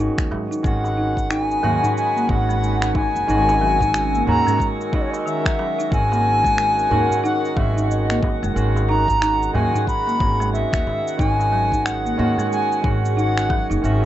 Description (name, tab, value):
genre	organic downtempo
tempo	91 BPM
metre	4/4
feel	swing 60% on 16ths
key	G# minor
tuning	A4 = 441 Hz
part	barky tine electric piano	accompaniment	0.0-14.1 s	D#3 to F#4	-26 LUFS	right 4 dB	overdrive, sidechain pumping
part	folk marimba with medium hard mallets	arpeggios	0.0-14.1 s	D#3 to D#4	-27 LUFS	left 1 dB	tape echo
part	upright bass	bass	0.0-14.1 s	F#1 to G#2	-23 LUFS	equal	none
part	electronic finger snaps and cabasa	drums	0.2-14.0 s	none	-29 LUFS	equal	none
part	electronic kick drum	drums	0.2-13.7 s	none	-23 LUFS	equal	none
part	darbuka	percussion	0.3-13.7 s	none	-28 LUFS	right 1 dB	none
part	bright reedy bass bansuri	melody	0.6-14.1 s	C#5 to B5	-22 LUFS	left 1 dB	plate reverb
part	ethereal airy pad	sustained chords	1.1-14.1 s	A#3 to E6	-30 LUFS	equal	ensemble chorus, built-in reverb, sidechain pumping
part	drifting glass-harmonics texture	texture	1.1-14.1 s	F#4 to F#5	-32 LUFS	equal	chorus, built-in reverb
room	wet small room reverb, RT60 0.5 s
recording	rough home demo mix, nothing above 8.0 kHz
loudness	-17 LUFS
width	side -12 dB against mid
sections	0.0-14.1 A section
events	none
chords	0.0 G#7sus4; 0.6 G#m7; 3.3 A#m7b5/G#; 5.9 F#69; 8.6 Emaj7/G#; 11.2 G#5